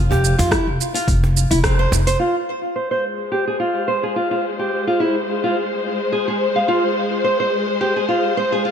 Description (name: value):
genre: organic downtempo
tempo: 107 BPM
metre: 4/4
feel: swing 55% on 16ths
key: F harmonic minor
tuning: A4 = 439 Hz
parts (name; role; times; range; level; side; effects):
- upright bass; bass; 0.0-2.1 s; F1 to F2; -18 LUFS; equal; sidechain pumping
- nylon-string guitar; arpeggios; 0.1-8.7 s; C4 to F5; -20 LUFS; right 1 dB; low-pass filter, digital delay
- cajon; percussion; 0.1-2.0 s; none; -26 LUFS; right 1 dB; none
- deep house drum kit; drums; 0.2-2.2 s; hi-hat, rim click, shaker; -23 LUFS; right 2 dB; overdrive, low-pass filter on hats, small room ambience, low-pass filter on snare, low-pass filter on perc
- electronic kick drum; drums; 0.5-1.8 s; none; -21 LUFS; equal; overdrive, small room ambience
- warm symphonic string section; sustained chords; 2.9-8.7 s; Ab3 to C5; -22 LUFS; left 2 dB; sidechain pumping, low-pass filter
room: moderate echo chamber reverb, RT60 2.0 s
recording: none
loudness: -17 LUFS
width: side -8 dB against mid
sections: 0.0-2.2 A section; 2.2-8.7 B section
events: band accent 1.6; filter sweep on nylon-string guitar 2.2-8.7; filter sweep on string section 2.2-8.7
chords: 0.0 Fsus2; 2.2 Fm